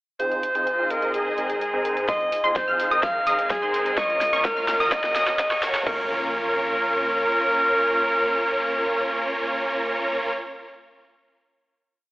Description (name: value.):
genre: EDM, festival progressive house.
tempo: 127 BPM.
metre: 4/4.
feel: straight.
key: Bb minor.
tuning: A4 = 435 Hz.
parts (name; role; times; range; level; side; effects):
breathy alto saxophone; melody; 0.2-10.3 s; Ab4 to F5; -23 LUFS; equal; digital delay.
supersaw pad; sustained chords; 0.5-10.3 s; F3 to Eb5; -33 LUFS; equal; sidechain pumping.
supersaw chords; riff; 0.2-10.3 s; Bb3 to F5; -26 LUFS; equal; sidechain pumping, low-pass filter, digital delay.
big-room dance drum kit; drums; 0.2-6.0 s; crash cymbal, hi-hat, snare drum; -31 LUFS; equal; overdrive.
wide unison pluck; arpeggios; 2.1-10.3 s; C6 to F6; -26 LUFS; equal; vintage 12-bit sampler grit, sidechain pumping, digital delay.
saturated sub bass; bass; 2.1-7.2 s; F1 to Ab2; -52 LUFS; equal; none.
electronic kick drum; drums; 2.1-6.0 s; none; -28 LUFS; equal; none.
riser and impact; sound effects; 3.8-10.4 s; none; -40 LUFS; equal; none.
room: moderate scoring stage reverb, RT60 1.6 s, digital ambience.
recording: high-pass filter, telephone sound.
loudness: -20 LUFS.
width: side -19 dB against mid.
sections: 0.2-2.1 intro; 2.1-5.9 build; 5.9-9.6 final chord.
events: build-up 2.1-5.9; drum fill 2.1-5.9; filter sweep on supersaw synth 2.1-5.9; filter sweep 2.1-5.9.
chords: 0.2 Fm7; 1.1 Abadd9; 2.1 Fm7; 3.0 Abadd9; 4.0 Bbm; 4.9 Gb; 5.9 Bbm.